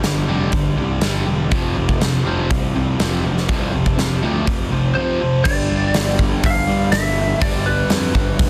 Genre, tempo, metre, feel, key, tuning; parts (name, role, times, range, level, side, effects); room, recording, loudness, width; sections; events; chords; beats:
hard rock; 122 BPM; 4/4; straight; A4 = 440 Hz
biting overdriven guitar; riff; 0.0-8.5 s; F2 to G3; -29 LUFS; equal
crunchy overdriven guitar; riff; 0.0-8.5 s; F2 to G3; -26 LUFS; equal
overdriven semi-hollow guitar; riff; 0.0-5.4 s; F2 to G3; -29 LUFS; equal
fuzz picked electric bass; bass; 0.0-8.5 s; E1 to G2; -24 LUFS; equal; overdrive
huge arena drum kit; drums; 0.0-8.5 s; crash cymbal, hi-hat, kick drum, snare drum; -23 LUFS; equal
lightly driven lead guitar; melody; 5.0-8.5 s; B4 to F5; -24 LUFS; equal; analog delay
little or no reverb; dense, heavily limited modern master; -18 LUFS; mono
0.0-5.5 A section; 5.5-8.5 B section
0.0 G5; 1.5 F5; 5.5 G
0.04 0.54 1.03 | 1.52 2.01 2.51 3.00 | 3.49 3.98 4.48 4.97 | 5.46 5.95 6.44 6.93 | 7.42 7.91 8.39